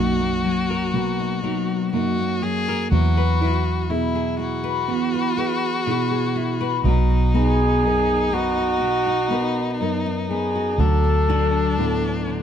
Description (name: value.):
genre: acoustic folk-pop ballad.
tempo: 61 BPM.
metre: 4/4.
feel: straight.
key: B major.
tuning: A4 = 440 Hz.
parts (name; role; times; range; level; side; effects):
warm violin; second line; 0.0-12.4 s; D4 to G#4; -27 LUFS; left 2 dB; none.
nylon-string guitar; accompaniment; 0.0-12.4 s; F#2 to B4; -25 LUFS; left 4 dB; none.
felt-muted upright piano; arpeggios; 0.0-12.4 s; F#3 to A#4; -26 LUFS; right 3 dB; none.
vintage muted fingered electric bass; bass; 0.0-12.4 s; B1 to E2; -22 LUFS; right 1 dB; none.
mellow flugelhorn; melody; 7.4-12.3 s; F#4 to A4; -22 LUFS; equal; none.
room: light reverb.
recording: none.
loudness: -19 LUFS.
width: side -9 dB against mid.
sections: 0.0-12.4 A section.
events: none.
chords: 0.0 Bmaj7; 2.9 Eadd9; 6.9 Bmaj7; 10.8 D6.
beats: 0.94 1.93 | 2.92 3.90 4.88 5.87 | 6.85 7.83 8.82 9.80 | 10.79 11.78.